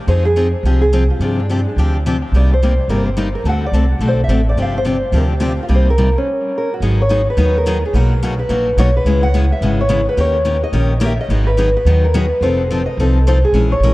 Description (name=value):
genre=acoustic string swing (jazz manouche)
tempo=214 BPM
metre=4/4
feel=swing 57% on 8ths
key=C minor, G# minor from 6.8 s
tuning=A4 = 438 Hz
part: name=picked old ladder-braced acoustic guitar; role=melody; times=0.1-13.9 s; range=Db4 to F#5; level=-19 LUFS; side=equal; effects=dub echo
part: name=picked steel-string acoustic guitar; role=accompaniment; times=0.1-13.9 s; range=B2 to A#4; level=-20 LUFS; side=left 2 dB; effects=dub echo
part: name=upright bass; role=bass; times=0.1-13.9 s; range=F1 to G2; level=-15 LUFS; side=equal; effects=none
room=light reverb, small room ambience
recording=echo-heavy mix, cassette tape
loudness=-13 LUFS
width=side -18 dB against mid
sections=0.0-6.8 A section; 6.8-13.9 B section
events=stop 6.3-6.8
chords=0.1 Fm7; 1.2 G7sus4; 2.3 Cm7; 3.5 D7; 4.6 G7sus4; 5.7 Cm7; 6.3 N.C.; 6.8 G#m7; 7.9 Bmaj7; 9.1 C#m7; 10.2 D#7; 11.3 G#m7; 12.4 F7